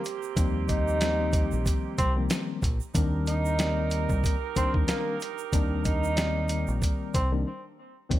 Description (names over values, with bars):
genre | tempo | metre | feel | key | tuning
hip hop, boom-bap hip-hop | 93 BPM | 4/4 | swing 56% on 16ths | C minor | A4 = 440 Hz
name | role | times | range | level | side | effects
clear saxophone section | stabs | 0.0-7.4 s | Bb3 to Bb4 | -36 LUFS | right 11 dB | high-pass filter, low-pass filter, tape echo
tube shaker | percussion | 0.0-7.3 s | none | -44 LUFS | right 14 dB | none
dusty soul sampler-style drum kit | drums | 0.1-8.2 s | hi-hat, kick drum, snare drum | -27 LUFS | equal | none
mellow tine electric piano | accompaniment | 0.4-8.2 s | Eb3 to D5 | -33 LUFS | left 5 dB | medium stereo tremolo, high-pass filter, low-pass filter
deep dub fingered electric bass | bass | 0.4-8.2 s | Bb1 to Eb2 | -29 LUFS | equal | none
breathy tenor saxophone | melody | 0.7-7.3 s | Bb3 to Eb4 | -31 LUFS | right 1 dB | high-pass filter, low-pass filter, tape echo
room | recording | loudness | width
studio reverb | none | -24 LUFS | side -14 dB against mid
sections
0.0-8.1 A section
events
break 0.0-0.4, 7.5-8.1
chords
0.0 Eb69; 2.9 Cm9